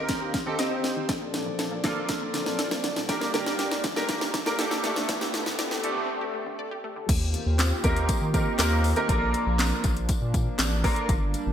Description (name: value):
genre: dance-pop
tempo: 120 BPM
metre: 4/4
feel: straight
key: unclear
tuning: A4 = 440 Hz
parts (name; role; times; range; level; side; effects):
- clear baby grand piano; accompaniment; 0.0-11.1 s; A3 to C5; -29 LUFS; right 1 dB; ensemble chorus
- chorused pulse-width pad; sustained chords; 0.0-11.5 s; D2 to F5; -34 LUFS; left 1 dB; sidechain pumping
- wide unison pluck; arpeggios; 0.0-7.1 s; G2 to Eb5; -38 LUFS; left 2 dB; wide subtle chorus, sidechain pumping, digital delay
- riser; sound effects; 1.4-6.1 s; none; -39 LUFS; right 1 dB; none
- house drum kit; drums; 0.1-11.5 s; crash cymbal, handclaps, hi-hat, kick drum, snare drum; -27 LUFS; equal; gated reverb
- saturated sub bass; bass; 7.1-11.5 s; G1 to Eb3; -26 LUFS; equal; sidechain pumping
- tambourine; percussion; 7.1-11.5 s; none; -40 LUFS; left 10 dB; none
room: moderate lush hall reverb, RT60 1.9 s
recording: bright 1980s-style digital production, high-pass filter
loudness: -24 LUFS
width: side -9 dB against mid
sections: 0.0-7.1 A section; 7.1-11.5 B section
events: build-up 0.0-7.1; drum fill 0.0-6.1; riser 1.4-7.1; break 6.1-7.1; drop 7.1-11.5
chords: 0.0 Eb6; 1.1 Bbmaj7; 3.1 Gm; 4.8 Dsus4; 7.1 Eb6; 9.1 Bbmaj7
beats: 0.09 0.59 | 1.09 1.59 2.09 2.59 | 3.09 3.59 4.09 4.59 | 5.09 5.59 6.09 6.59 | 7.09 7.59 8.09 8.59 | 9.09 9.59 10.09 10.59 | 11.09